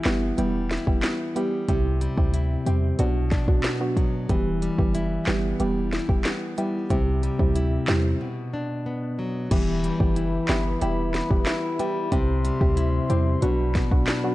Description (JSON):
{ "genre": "dancehall", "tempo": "92 BPM", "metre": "4/4", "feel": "straight", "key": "E minor", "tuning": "A4 = 440 Hz", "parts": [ { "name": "nylon-string guitar", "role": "arpeggios", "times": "0.0-14.3 s", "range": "B2 to E4", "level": "-28 LUFS", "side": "left 2 dB", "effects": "analog delay" }, { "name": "afro-pop drum kit", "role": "drums", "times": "0.0-14.2 s", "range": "crash cymbal, handclaps, hi-hat, kick drum, snare drum", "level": "-25 LUFS", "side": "equal", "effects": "none" }, { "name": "soft round pluck", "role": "accompaniment", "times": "0.1-14.3 s", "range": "F#3 to G4", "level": "-28 LUFS", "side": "right 2 dB", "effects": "chorus" }, { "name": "clean 808-style bass", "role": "bass", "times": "0.1-14.0 s", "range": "E1 to E2", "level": "-26 LUFS", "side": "equal", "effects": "none" }, { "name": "mellow brass ensemble", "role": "sustained chords", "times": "9.5-14.3 s", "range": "F#4 to C6", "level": "-32 LUFS", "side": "left 2 dB", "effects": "sidechain pumping" } ], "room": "digital ambience", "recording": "dry, gritty hardware recording, cassette tape", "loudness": "-21 LUFS", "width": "side -17 dB against mid", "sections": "0.0-9.5 A section; 9.5-14.3 B section", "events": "break 8.2-9.5", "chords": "0.0 Em; 1.7 C; 3.0 Bm; 4.3 Em; 6.9 C; 8.2 Bm; 9.5 Em; 12.1 C; 13.4 Bm" }